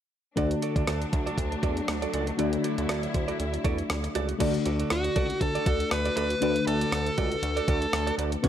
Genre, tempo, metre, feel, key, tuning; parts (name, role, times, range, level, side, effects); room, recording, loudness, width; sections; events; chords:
1980s-style pop; 119 BPM; 4/4; swing 55% on 16ths; D major; A4 = 444 Hz
mellow FM electric piano; accompaniment; 0.4-8.5 s; C#3 to D5; -30 LUFS; left 3 dB; chorus
clear studio string section; sustained chords; 0.4-4.4 s; F#3 to E4; -37 LUFS; left 1 dB
direct-recorded clean electric guitar; riff; 0.4-8.5 s; F#4 to D5; -34 LUFS; right 8 dB; wide subtle chorus
chorused synth bass; bass; 0.4-8.5 s; C#2 to E2; -32 LUFS; equal
gated 80s digital drum machine; drums; 0.4-8.5 s; crash cymbal, hi-hat, kick drum, rim click; -30 LUFS; equal
dark smooth lead guitar; melody; 4.9-8.1 s; F#4 to B4; -28 LUFS; equal; overdrive
light reverb, digital ambience; -25 LUFS; side -10 dB against mid
0.4-4.4 A section; 4.4-8.5 B section
0.4 D